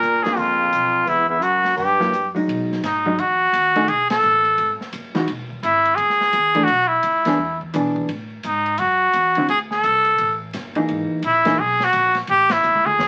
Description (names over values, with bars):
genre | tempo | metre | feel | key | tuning
jazz, small-group swing and bop | 171 BPM | 4/4 | swing 63% on 8ths | B major | A4 = 439 Hz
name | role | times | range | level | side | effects
trumpet with straight mute | melody | 0.0-13.1 s | D#4 to A#4 | -19 LUFS | equal | none
breathy baritone saxophone | second line | 0.0-2.3 s | E2 to A#2 | -28 LUFS | equal | none
upright bass | bass | 0.0-13.1 s | E1 to B2 | -36 LUFS | equal | none
swinging big-band drum kit | drums | 0.0-13.1 s | hi-hat, kick drum, ride cymbal, snare drum, toms | -35 LUFS | equal | none
vintage hollow-body jazz guitar | accompaniment | 0.3-11.6 s | D3 to G#4 | -24 LUFS | equal | none
room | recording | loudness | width
moderate studio reverb, RT60 0.5 s | very old 78 rpm record, vinyl crackle | -19 LUFS | mono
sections
0.0-2.5 A section; 2.5-13.1 B section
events
band accent 4.1, 12.5; drum fill 12.6-13.1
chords
0.0 F#maj9 (rootless); 1.1 C#madd11; 1.8 F#7b9; 2.5 B6; 5.3 Emaj7; 6.7 Bmadd9; 7.4 E7; 8.1 A5; 9.5 Dsus2; 10.9 Emaj9#11; 12.3 A